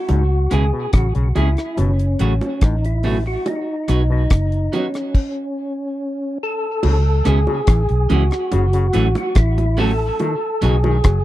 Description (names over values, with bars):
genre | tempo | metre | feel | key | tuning
roots reggae | 71 BPM | 4/4 | straight | C# minor | A4 = 440 Hz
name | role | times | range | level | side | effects
percussive tonewheel organ | melody | 0.0-11.2 s | C#4 to A4 | -23 LUFS | equal | overdrive, fast rotary speaker, tape echo
overdriven clav | arpeggios | 0.1-11.2 s | G#2 to F#3 | -26 LUFS | left 5 dB | auto-wah
vintage muted fingered electric bass | bass | 0.1-11.2 s | F#1 to C#2 | -17 LUFS | equal | none
deep reggae drum kit | drums | 0.1-11.2 s | crash cymbal, hi-hat, kick drum, rim click | -17 LUFS | equal | none
bongos | percussion | 0.1-11.0 s | none | -26 LUFS | right 3 dB | none
clean electric guitar | accompaniment | 0.5-10.8 s | F#3 to G#4 | -25 LUFS | right 3 dB | tape echo
room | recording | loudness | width
little or no reverb | dry, close 1970s-style studio recording | -16 LUFS | side -15 dB against mid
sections
0.0-6.8 A section; 6.8-11.2 B section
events
stop 5.1-6.8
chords
0.1 C#m; 1.8 F#m; 3.5 B; 5.1 N.C.; 6.8 C#m; 8.5 F#m; 10.2 B